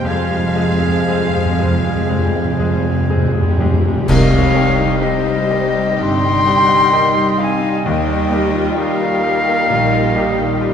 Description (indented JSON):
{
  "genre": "cinematic, emotional film score for orchestra",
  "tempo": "59-65 BPM",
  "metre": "4/4",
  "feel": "rubato",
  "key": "unclear",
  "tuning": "A4 = 440 Hz",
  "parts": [
    { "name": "warm studio violin section", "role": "melody", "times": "0.0-10.7 s", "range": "G4 to F5", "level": "-28 LUFS", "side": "left 3 dB", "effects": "none" },
    { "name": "bright clarinet", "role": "second line", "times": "0.0-10.7 s", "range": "G3 to Ab3", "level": "-27 LUFS", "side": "left 1 dB", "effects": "none" },
    { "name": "silver concert flute", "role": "second line", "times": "0.0-10.7 s", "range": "C5 to C6", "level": "-18 LUFS", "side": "left 2 dB", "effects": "none" },
    { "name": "warm oboe", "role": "second line", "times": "0.0-10.7 s", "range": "Eb5 to Ab5", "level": "-27 LUFS", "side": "right 1 dB", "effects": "none" },
    { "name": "warm studio violin section", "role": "second line", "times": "0.0-10.7 s", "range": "G4 to G5", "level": "-27 LUFS", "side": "left 3 dB", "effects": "none" },
    { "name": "bright concert grand piano", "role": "accompaniment", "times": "0.0-10.7 s", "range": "C2 to Ab4", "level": "-23 LUFS", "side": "left 2 dB", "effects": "none" },
    { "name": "rich studio viola section", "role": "accompaniment", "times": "0.0-10.7 s", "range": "Eb3 to F4", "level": "-25 LUFS", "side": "right 2 dB", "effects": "none" },
    { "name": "warm French horn section", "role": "sustained chords", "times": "0.0-10.7 s", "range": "G3 to Eb4", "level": "-24 LUFS", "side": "left 2 dB", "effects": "none" },
    { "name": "concert harp", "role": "arpeggios", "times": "0.0-10.7 s", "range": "C3 to Ab4", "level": "-26 LUFS", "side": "left 7 dB", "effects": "none" },
    { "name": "warm studio cello section", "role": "bass", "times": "0.0-10.5 s", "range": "C2 to F3", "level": "-24 LUFS", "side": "right 3 dB", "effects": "none" },
    { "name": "warm studio double bass section", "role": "bass", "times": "0.0-10.5 s", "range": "G1 to F2", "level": "-23 LUFS", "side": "right 5 dB", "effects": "none" },
    { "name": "timpani", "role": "percussion", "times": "0.0-5.5 s", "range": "F2 to C3", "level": "-19 LUFS", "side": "left 1 dB", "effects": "none" },
    { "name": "cymbal swell, clash cymbals and concert bass drum", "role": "percussion", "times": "0.1-5.9 s", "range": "none", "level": "-25 LUFS", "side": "equal", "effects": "none" }
  ],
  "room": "wet concert hall reverb, RT60 2.0 s",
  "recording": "dark, warm production",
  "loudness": "-13 LUFS",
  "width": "side -8 dB against mid",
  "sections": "0.0-4.1 A section; 4.1-10.7 B section",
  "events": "timpani fill 0.0-4.1; band accent 4.1-5.0",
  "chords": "0.0 Fmadd9; 4.1 Cm; 7.8 Ebadd9",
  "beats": "| 0.07 1.08 2.10 3.09 | 4.07 5.01 5.98 6.92 | 7.85 8.77 9.69 10.61"
}